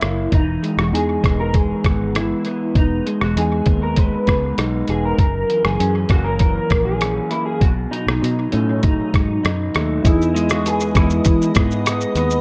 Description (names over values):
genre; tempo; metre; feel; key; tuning
indie pop, bedroom pop; 99 BPM; 4/4; straight; E lydian; A4 = 440 Hz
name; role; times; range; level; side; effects
electric guitar through a small old amp; melody; 0.0-11.8 s; C#4 to B4; -25 LUFS; equal; ensemble chorus, tape echo
electric guitar through a small old amp; accompaniment; 0.0-12.4 s; F#2 to E4; -25 LUFS; equal; lush chorus, warbly pitch drift, tape echo
fingered electric bass; bass; 0.0-12.4 s; E1 to E3; -24 LUFS; equal; none
lo-fi sampler-style drum kit; drums; 0.0-12.4 s; hi-hat, kick drum, rim click, shaker; -20 LUFS; equal; none
soft electric-piano-like synth keys; accompaniment; 10.0-12.4 s; B3 to D#5; -29 LUFS; equal; chorus, cassette tape
hollow soft pad; sustained chords; 10.0-12.4 s; G#4 to D#6; -32 LUFS; equal; ensemble chorus
room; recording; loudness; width
light reverb, digital ambience; echo-heavy mix, cassette tape; -18 LUFS; mono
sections
0.0-10.0 A section; 10.0-12.4 B section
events
none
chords
0.3 Emaj7; 5.2 F#7; 7.6 B7; 10.0 Emaj7